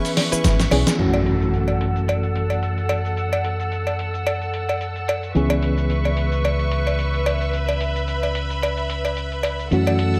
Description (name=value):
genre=nu-disco, nu disco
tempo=110 BPM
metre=4/4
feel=swing 55% on 16ths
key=C# minor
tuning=A4 = 440 Hz
part: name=reed electric piano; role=accompaniment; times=0.0-10.2 s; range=E3 to G#4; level=-27 LUFS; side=equal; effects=fast tremolo, digital delay
part: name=rich studio string section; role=sustained chords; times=0.0-10.2 s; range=A4 to E6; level=-29 LUFS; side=equal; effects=sidechain pumping, low-pass filter
part: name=direct-recorded clean electric guitar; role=riff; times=0.0-0.9 s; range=C#4 to B4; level=-30 LUFS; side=equal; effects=analog chorus, digital delay
part: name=dusty soul sampler-style drum kit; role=drums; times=0.0-10.2 s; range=crash cymbal, hi-hat, shaker, snare drum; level=-30 LUFS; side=equal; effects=low-pass filter on hats, studio reverb, low-pass filter on perc, low-pass filter on snare, low-pass filter on cymbals
part: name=cowbell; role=percussion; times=0.2-10.0 s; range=none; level=-29 LUFS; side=equal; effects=none
part: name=fingered electric bass with an envelope filter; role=bass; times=0.3-10.2 s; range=G#1 to F#2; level=-25 LUFS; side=equal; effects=tube saturation
part: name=electronic kick drum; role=drums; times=0.4-0.6 s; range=none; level=-22 LUFS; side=equal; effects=studio reverb
part: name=impact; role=sound effects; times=1.0-3.2 s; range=none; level=-32 LUFS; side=equal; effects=none
room=light reverb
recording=none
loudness=-22 LUFS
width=mono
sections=1.0-10.2 A section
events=drum fill 0.2-1.0; band accent 0.9; impact 1.0-3.2; filter sweep on string section 1.0-10.2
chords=0.0 C#m7; 1.0 F#m7; 5.4 C#m7